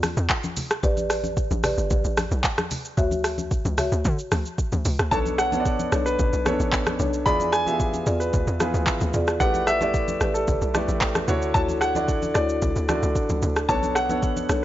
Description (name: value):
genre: amapiano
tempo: 112 BPM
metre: 4/4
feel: straight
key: B minor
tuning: A4 = 442 Hz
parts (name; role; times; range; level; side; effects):
- hollow log drum bass; bass; 0.0-14.6 s; G1 to D3; -27 LUFS; equal; none
- smooth R&B drum kit; drums; 0.0-14.6 s; handclaps, hi-hat, kick drum, rim click, shaker; -25 LUFS; equal; none
- congas; percussion; 0.0-14.5 s; none; -34 LUFS; left 2 dB; none
- marimba with medium mallets; stabs; 0.8-14.6 s; D4 to E5; -29 LUFS; left 1 dB; analog delay
- warm grand piano; melody; 5.1-14.6 s; A4 to B5; -26 LUFS; equal; analog delay
- warm grand piano; accompaniment; 5.1-14.6 s; B2 to E5; -27 LUFS; right 1 dB; none
room: light reverb, small room reverb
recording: dry, gritty hardware recording, nothing above 7.6 kHz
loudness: -21 LUFS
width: side -13 dB against mid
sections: 0.0-5.1 A section; 5.1-14.6 B section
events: drop 0.0-5.1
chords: 0.0 N.C.; 0.8 A9sus4; 2.7 Dmaj9; 5.1 Bm9; 7.3 E7b9; 9.4 A9sus4; 11.3 Dmaj9; 13.7 Bm9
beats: 0.30 | 0.83 1.37 1.91 2.44 | 2.98 3.51 4.05 4.58 | 5.12 5.66 6.19 6.73 | 7.26 7.80 8.33 8.87 | 9.41 9.94 10.48 11.01 | 11.55 12.08 12.62 13.16 | 13.69 14.23